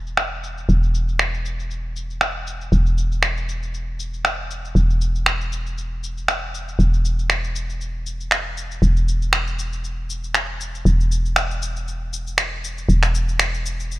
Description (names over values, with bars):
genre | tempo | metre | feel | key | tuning
afro house | 118 BPM | 4/4 | swing 55% on 16ths | unclear | A4 = 439 Hz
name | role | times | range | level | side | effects
woody FM bass | bass | 0.0-14.0 s | E1 | -21 LUFS | equal | none
electronic cabasa and finger snaps | drums | 0.1-14.0 s | none | -22 LUFS | right 1 dB | low-pass filter on perc, low-pass filter on snare, low-pass filter on toms, low-pass filter on room
room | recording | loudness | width
little or no reverb | none | -19 LUFS | side -18 dB against mid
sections
0.0-14.0 A section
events
none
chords
none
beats
0.18 | 0.69 1.20 1.70 2.21 | 2.72 3.23 3.74 4.25 | 4.75 5.26 5.77 6.28 | 6.79 7.30 7.80 8.31 | 8.82 9.33 9.84 10.35 | 10.86 11.36 11.87 12.38 | 12.89 13.40 13.91